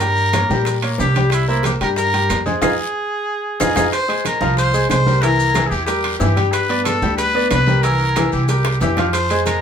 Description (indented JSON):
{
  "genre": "latin, salsa",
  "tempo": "184 BPM",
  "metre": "4/4",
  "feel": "straight",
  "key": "F minor",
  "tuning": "A4 = 439 Hz",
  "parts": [
    { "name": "clear trumpet", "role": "melody", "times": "0.0-9.6 s", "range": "E4 to C5", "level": "-20 LUFS", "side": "equal", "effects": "none" },
    { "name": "bright upright piano", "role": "accompaniment", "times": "0.0-9.6 s", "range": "E3 to G5", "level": "-20 LUFS", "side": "left 1 dB", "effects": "none" },
    { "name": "upright bass", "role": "bass", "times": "0.0-9.6 s", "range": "C2 to Bb2", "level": "-20 LUFS", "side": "right 1 dB", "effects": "none" },
    { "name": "bongos", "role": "percussion", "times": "0.0-9.6 s", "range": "none", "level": "-29 LUFS", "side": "left 4 dB", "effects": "none" },
    { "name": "congas", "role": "percussion", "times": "0.0-9.6 s", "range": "none", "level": "-27 LUFS", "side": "equal", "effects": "none" },
    { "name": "guiro", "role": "percussion", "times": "0.0-9.6 s", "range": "none", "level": "-34 LUFS", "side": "left 4 dB", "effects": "none" },
    { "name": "maracas", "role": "percussion", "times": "0.0-9.6 s", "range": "none", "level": "-32 LUFS", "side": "equal", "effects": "none" },
    { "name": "timbales", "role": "percussion", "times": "0.0-9.6 s", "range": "none", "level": "-27 LUFS", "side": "right 6 dB", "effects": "none" },
    { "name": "claves", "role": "percussion", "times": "0.3-9.6 s", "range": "none", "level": "-30 LUFS", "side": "right 8 dB", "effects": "none" }
  ],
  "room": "moderate small room ambience, RT60 0.5 s",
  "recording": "band playing live in one room",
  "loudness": "-15 LUFS",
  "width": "side -7 dB against mid",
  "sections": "0.0-3.9 A section; 3.9-9.6 B section",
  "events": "band accent 2.6-3.9; drum fill 2.9-3.9, 8.5-9.1",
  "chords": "0.0 Gdim; 1.3 C5; 2.6 Fm7; 3.9 Fm; 5.2 C7; 6.5 G; 7.8 C7"
}